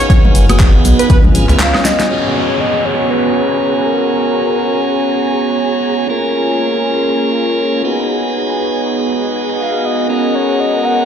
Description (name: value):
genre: deep house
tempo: 120 BPM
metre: 4/4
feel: swing 58% on 16ths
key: G# dorian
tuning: A4 = 436 Hz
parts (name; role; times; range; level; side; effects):
- plucky unison lead; melody; 0.0-1.2 s; B4 to C#5; -20 LUFS; right 1 dB; tape echo
- warm analog pad; sustained chords; 0.0-11.1 s; G#3 to A#5; -22 LUFS; right 1 dB; chorus, vintage 12-bit sampler grit, sidechain pumping
- tonewheel organ; stabs; 0.0-11.1 s; A#3 to C#5; -17 LUFS; right 1 dB; overdrive, stopped rotary speaker, vintage 12-bit sampler grit, sidechain pumping, low-pass filter, tape echo
- deep house drum kit; drums; 0.0-11.1 s; handclaps, hi-hat, snare drum, woodblock; -18 LUFS; left 1 dB; low-pass filter on hats, low-pass filter on perc, low-pass filter on snare
- tube shaker; percussion; 0.0-2.1 s; none; -28 LUFS; left 3 dB; none
- airy breathy pad; texture; 0.0-11.1 s; B3 to A#5; -20 LUFS; right 2 dB; chorus, sidechain pumping
- soft string machine; texture; 0.0-11.1 s; G#4 to E#6; -27 LUFS; left 1 dB; ensemble chorus
- organ-like FM bass; bass; 0.1-1.6 s; F#1 to C#2; -12 LUFS; equal; tube saturation, sidechain pumping
- electronic kick drum; drums; 0.1-1.2 s; none; -10 LUFS; equal; none
- congas; percussion; 0.2-1.5 s; none; -20 LUFS; left 3 dB; sidechain pumping on perc
- breathy flute-like synth lead; melody; 1.6-4.8, 9.6-11.1 s; A#4 to F#5; -18 LUFS; left 3 dB; chorus, tape echo
- downlifter; sound effects; 2.1-6.1 s; none; -23 LUFS; equal; none
room: moderate echo chamber reverb, RT60 1.4 s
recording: played on a big sound system in a bare room, large studio reverb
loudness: -11 LUFS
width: side -8 dB against mid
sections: 0.0-2.1 A section; 2.1-11.1 B section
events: break 1.6-2.1; drum fill 1.6-2.1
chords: 0.0 B6; 1.1 C#7; 2.1 G#m11; 6.1 A#m7; 7.8 G#m11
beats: | 0.10 0.60 1.10 1.60 | 2.10 2.60 3.10 3.60 | 4.10 4.60 5.10 5.60 | 6.10 6.60 7.10 7.60 | 8.10 8.60 9.10 9.60 | 10.10 10.60